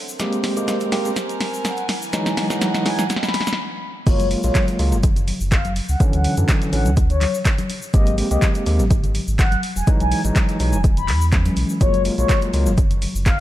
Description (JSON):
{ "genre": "deep house", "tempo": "124 BPM", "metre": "4/4", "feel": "swing 54% on 16ths", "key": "unclear", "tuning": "A4 = 440 Hz", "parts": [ { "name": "rich chamber string section", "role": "texture", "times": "0.0-3.6 s", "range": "D3 to G#5", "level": "-29 LUFS", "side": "right 2 dB", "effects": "sidechain pumping" }, { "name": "egg shaker", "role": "percussion", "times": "0.1-13.4 s", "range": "none", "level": "-36 LUFS", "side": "left 3 dB", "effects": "none" }, { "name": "mellow horn-like synth lead", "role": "melody", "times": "0.2-13.4 s", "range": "C#5 to B5", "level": "-27 LUFS", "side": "left 3 dB", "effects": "phaser, wide subtle chorus, ping-pong delay" }, { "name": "overdriven tine electric piano", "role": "stabs", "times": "0.2-12.7 s", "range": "D3 to G4", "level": "-24 LUFS", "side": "equal", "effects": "fast tremolo, sidechain pumping, low-pass filter" }, { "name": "breakbeat sampler-style drum kit", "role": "drums", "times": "0.2-13.4 s", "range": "hi-hat, shaker, snare drum", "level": "-36 LUFS", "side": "left 1 dB", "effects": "none" }, { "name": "punchy analog drum machine", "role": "drums", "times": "0.2-13.4 s", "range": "crash cymbal, handclaps, hi-hat, snare drum", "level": "-26 LUFS", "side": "equal", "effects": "none" }, { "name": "sub bass with octave", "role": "bass", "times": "4.1-13.4 s", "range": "E1 to F#2", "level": "-20 LUFS", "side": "equal", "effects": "sidechain pumping" }, { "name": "electronic kick drum", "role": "drums", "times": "4.1-13.4 s", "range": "none", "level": "-17 LUFS", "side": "equal", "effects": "none" }, { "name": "congas", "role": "percussion", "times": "4.2-13.4 s", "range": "none", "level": "-30 LUFS", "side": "left 3 dB", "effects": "none" } ], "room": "light reverb", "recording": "dark, warm production", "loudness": "-17 LUFS", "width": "side -14 dB against mid", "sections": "0.0-4.1 A section; 4.1-13.4 B section", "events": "build-up 0.0-4.1; drum fill 0.0-3.6; filter sweep on soft synth lead 0.0-4.1; break 3.6-4.1; drop 4.1-13.4", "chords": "0.0 G#maj9; 1.9 Emaj9; 4.1 F#maj9; 6.0 Dmaj9; 7.7 G#maj9; 9.6 Emaj9; 11.8 F#maj9" }